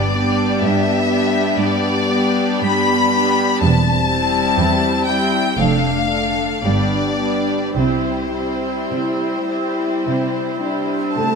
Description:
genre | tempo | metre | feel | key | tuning
classical, slow romantic movement for symphony orchestra | 52-65 BPM | 4/4 | rubato | C major | A4 = 440 Hz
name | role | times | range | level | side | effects
rich chamber violin section | melody | 0.0-11.1 s | C5 to B5 | -21 LUFS | left 5 dB | none
warm chamber violin section | second line | 0.0-11.4 s | D4 to A5 | -24 LUFS | left 1 dB | none
rich chamber viola section | accompaniment | 0.0-11.4 s | D3 to C4 | -24 LUFS | right 3 dB | none
mellow French horn section | sustained chords | 0.0-11.4 s | G3 to A4 | -22 LUFS | left 2 dB | none
rich chamber cello section | bass | 0.0-11.4 s | E2 to A3 | -23 LUFS | right 3 dB | none
rich chamber double bass section | bass | 0.0-8.8 s | E1 to C2 | -23 LUFS | right 4 dB | none
concert flute | second line | 11.2-11.4 s | A5 | -22 LUFS | left 2 dB | none
warm clarinet | second line | 11.2-11.4 s | A4 | -25 LUFS | left 1 dB | none
room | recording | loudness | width
moderate scoring stage reverb, RT60 2.0 s | none | -15 LUFS | side -5 dB against mid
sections
0.0-11.4 A section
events
none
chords
0.0 G; 3.6 C/E; 5.6 Dm/F; 6.6 G; 7.8 C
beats
0.64 1.58 2.65 | 3.63 4.59 5.59 6.64 | 7.76 8.92 10.04 11.17

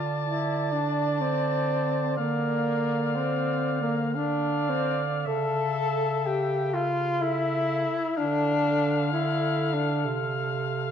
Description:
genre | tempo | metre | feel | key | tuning
classical, lyrical piece for single-reed quartet | 51-65 BPM | 3/4 | rubato | D minor | A4 = 440 Hz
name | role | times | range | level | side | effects
clear soprano saxophone | melody | 0.0-10.9 s | E5 to A5 | -33 LUFS | left 6 dB | none
mellow alto saxophone | second line | 0.0-10.9 s | A4 to D5 | -32 LUFS | right 8 dB | none
mellow tenor saxophone | accompaniment | 0.0-10.1 s | Bb3 to A4 | -27 LUFS | left 2 dB | none
clear bass clarinet | bass | 0.0-10.9 s | C3 to D3 | -31 LUFS | right 2 dB | none
room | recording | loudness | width
moderate scoring stage reverb, RT60 2.1 s | none | -24 LUFS | side -8 dB against mid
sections
0.0-10.9 A section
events
none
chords
0.0 D5; 2.2 Bb/D; 5.3 A/C#; 8.2 Dm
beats
0.23 1.22 | 2.19 3.16 4.15 | 5.27 6.27 7.21 | 8.17 9.12 10.05

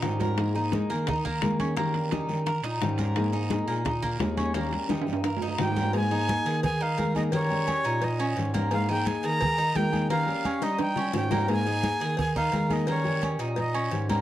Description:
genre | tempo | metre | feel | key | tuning
latin, Cuban son and guajira | 173 BPM | 4/4 | straight | unclear | A4 = 440 Hz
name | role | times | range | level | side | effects
fingerpicked steel-string acoustic guitar | accompaniment | 0.0-14.2 s | Eb3 to Ab4 | -31 LUFS | left 3 dB | none
Cuban tres | arpeggios | 0.0-14.2 s | Bb3 to Bb4 | -31 LUFS | right 1 dB | none
mellow bass clarinet | bass | 0.0-14.2 s | Eb2 to G3 | -30 LUFS | right 1 dB | none
bongos and cowbell | percussion | 0.0-14.2 s | none | -36 LUFS | left 5 dB | none
congas | percussion | 0.0-14.2 s | none | -33 LUFS | equal | none
guiro | percussion | 0.0-14.2 s | none | -44 LUFS | right 6 dB | none
timbales and agogo bells | percussion | 0.0-14.2 s | none | -35 LUFS | right 7 dB | none
breathy bright jazz flute | melody | 5.6-13.9 s | Db5 to Bb5 | -30 LUFS | right 1 dB | none
room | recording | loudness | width
moderate spring reverb, RT60 1.3 s | dark, warm production | -24 LUFS | side -13 dB against mid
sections
0.0-5.9 A section; 5.9-14.2 B section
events
drum fill 0.0-0.4, 4.9-5.9, 10.6-11.5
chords
0.4 Absus2; 1.8 Eb7; 3.2 Absus2; 4.5 Eb7; 5.9 Absus2; 7.3 Eb7; 8.7 Absus2; 10.1 Eb7; 11.5 Absus2; 12.9 Eb7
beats
0.03 | 0.38 0.72 1.07 1.42 | 1.77 2.12 2.46 2.81 | 3.16 3.51 3.85 4.20 | 4.55 4.90 5.25 5.59 | 5.94 6.29 6.63 6.98 | 7.33 7.67 8.02 8.37 | 8.71 9.06 9.41 9.76 | 10.10 10.45 10.80 11.14 | 11.49 11.84 12.19 12.53 | 12.88 13.23 13.57 13.92

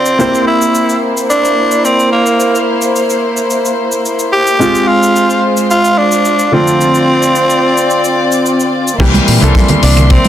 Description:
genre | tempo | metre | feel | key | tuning
nu-disco, nu disco | 109 BPM | 4/4 | straight | C mixolydian | A4 = 440 Hz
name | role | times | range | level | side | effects
raspy tenor saxophone | melody | 0.0-10.3 s | Bb3 to G4 | -12 LUFS | equal | tape echo
warm baby grand piano | accompaniment | 0.0-10.3 s | D3 to C5 | -15 LUFS | equal | sidechain pumping, analog delay
warm chamber string section | sustained chords | 0.0-10.3 s | Ab3 to C6 | -15 LUFS | equal | sidechain pumping
damped 70s drum kit | drums | 0.1-10.3 s | cabasa, crash cymbal, finger snaps, hi-hat, snare drum | -19 LUFS | left 2 dB | small room ambience
fingered electric bass with an envelope filter | bass | 9.0-10.2 s | C2 to Bb2 | -10 LUFS | equal | none
kick drum | drums | 9.0-10.2 s | none | -10 LUFS | equal | small room ambience
congas | percussion | 9.1-10.3 s | none | -15 LUFS | right 3 dB | none
room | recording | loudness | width
moderate plate reverb, RT60 1.6 s, small room reverb | dense, heavily limited modern master | -9 LUFS | side -11 dB against mid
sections
0.0-9.0 A section; 9.0-10.3 B section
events
drop 9.0-10.3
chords
0.2 C7; 4.6 Fm; 6.5 Dm7; 9.0 C7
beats
| 0.20 0.75 1.30 1.85 | 2.40 2.95 3.50 4.05 | 4.60 5.15 5.70 6.25 | 6.80 7.35 7.90 8.45 | 9.00 9.55 10.11

